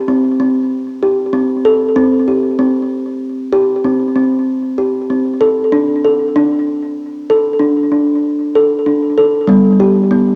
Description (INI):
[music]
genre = world meditative, meditative tuned percussion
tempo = 96 BPM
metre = 3/4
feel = straight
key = unclear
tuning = A4 = 440 Hz
[part]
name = kalimba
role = solo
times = 0.0-10.4 s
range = G3 to A4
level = -14 LUFS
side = equal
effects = cassette tape, tape echo
[sound]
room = moderate spring reverb, RT60 1.6 s, small room ambience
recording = home recording on cassette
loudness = -14 LUFS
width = mono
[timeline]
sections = 0.0-10.4 A section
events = none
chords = 0.0 C5; 5.7 D5; 9.5 G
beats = | 0.09 0.71 1.34 | 1.97 2.59 3.22 | 3.85 4.47 5.10 | 5.72 6.35 6.98 | 7.60 8.23 8.85 | 9.48 10.11